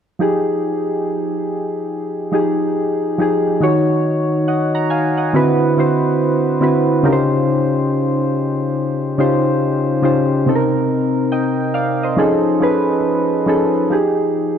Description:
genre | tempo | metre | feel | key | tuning
hip hop | 70 BPM | 4/4 | swing 64% on 16ths | F minor | A4 = 440 Hz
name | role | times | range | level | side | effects
soft electric-piano-like synth keys | accompaniment | 0.2-14.6 s | C3 to Bb5 | -14 LUFS | equal | chorus, cassette tape, low-pass filter
room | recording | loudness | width
moderate echo chamber reverb, RT60 2.1 s | none | -15 LUFS | side -8 dB against mid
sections
0.2-13.9 A section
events
none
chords
0.2 Fm9; 3.6 Ebm7; 5.3 D13; 7.0 Dbmaj9#11; 10.5 Cm7; 12.2 F7alt; 13.9 Fm9

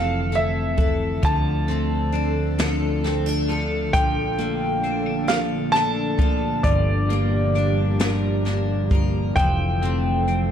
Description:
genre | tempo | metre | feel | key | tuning
six-eight pop ballad | 44 BPM (dotted quarters) | 6/8 | straight | F major | A4 = 440 Hz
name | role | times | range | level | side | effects
warm baby grand piano | melody | 0.0-10.5 s | D5 to A5 | -25 LUFS | equal | ping-pong delay
picked steel-string acoustic guitar | accompaniment | 0.0-10.5 s | G2 to Bb4 | -27 LUFS | equal | double-tracked left and right
airy breathy pad | sustained chords | 0.0-10.5 s | Bb2 to A4 | -28 LUFS | right 1 dB | chorus
twelve-string electric guitar | arpeggios | 0.0-10.5 s | E3 to D4 | -31 LUFS | left 6 dB | ping-pong delay
fretless electric bass | bass | 0.0-10.5 s | F1 to D2 | -24 LUFS | equal | analog chorus
jazz brush drum kit | drums | 0.3-10.5 s | hi-hat, kick drum, snare drum | -24 LUFS | equal | none
room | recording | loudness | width
light reverb, studio ambience | dark, warm production | -19 LUFS | side -9 dB against mid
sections
0.0-10.5 A section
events
none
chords
0.0 Fmaj7; 1.2 Dm7; 3.9 Bbmaj7; 6.6 Gm7; 9.4 Fmaj7

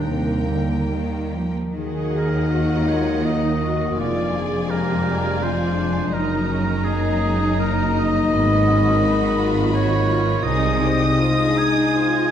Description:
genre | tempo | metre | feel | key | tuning
classical | 67-87 BPM | 3/4 | rubato | Eb minor | A4 = 439 Hz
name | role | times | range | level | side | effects
warm symphonic violin section | melody | 0.0-12.3 s | Gb5 to Eb6 | -32 LUFS | left 2 dB | none
clear clarinet | second line | 0.0-1.3 s | Eb4 | -30 LUFS | equal | none
warm symphonic violin section | second line | 0.0-12.3 s | Bb3 to Eb5 | -31 LUFS | left 4 dB | none
warm symphonic viola section | accompaniment | 0.0-12.3 s | Bb3 to Ab4 | -28 LUFS | right 2 dB | none
warm French horn section | sustained chords | 0.0-12.3 s | Gb3 to Eb4 | -25 LUFS | left 2 dB | none
concert harp | arpeggios | 0.0-12.3 s | F2 to Bb4 | -26 LUFS | left 5 dB | none
clear symphonic double bass section | bass | 0.0-11.1 s | F1 to Eb2 | -25 LUFS | right 3 dB | none
rich symphonic cello section | bass | 0.0-11.1 s | F2 to F3 | -25 LUFS | right 2 dB | none
warm oboe | second line | 2.2-12.3 s | Ab4 to Ab5 | -24 LUFS | equal | none
room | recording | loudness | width
wet recital hall reverb, RT60 1.5 s | dark, warm production | -18 LUFS | side -9 dB against mid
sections
0.0-1.8 A section; 1.8-12.3 B section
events
none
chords
0.0 Eb; 1.8 Ebm; 4.0 Ddim/F; 6.1 Ebm/Gb; 8.4 Abm7; 10.5 Ab/C

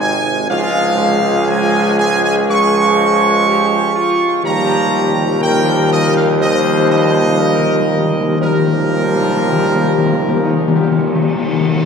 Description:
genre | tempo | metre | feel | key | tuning
classical | 60 BPM | 4/4 | straight | unclear | A4 = 441 Hz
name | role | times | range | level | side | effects
clear trumpet section | melody | 0.0-11.9 s | Bb4 to Db6 | -18 LUFS | right 2 dB | none
dark trombone section | sustained chords | 0.0-11.9 s | C3 to Ab3 | -19 LUFS | right 2 dB | none
mellow French horn section | sustained chords | 0.0-11.9 s | Eb4 to C5 | -20 LUFS | left 4 dB | none
clear tuba | bass | 0.0-11.9 s | Ab1 to Eb2 | -18 LUFS | right 2 dB | none
timpani | percussion | 4.4-11.8 s | Eb3 | -18 LUFS | left 5 dB | none
room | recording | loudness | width
wet cathedral reverb, RT60 5.5 s | none | -12 LUFS | side -6 dB against mid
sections
0.0-11.9 A section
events
timpani fill 4.4-11.9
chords
0.5 Db; 4.4 Ebadd9

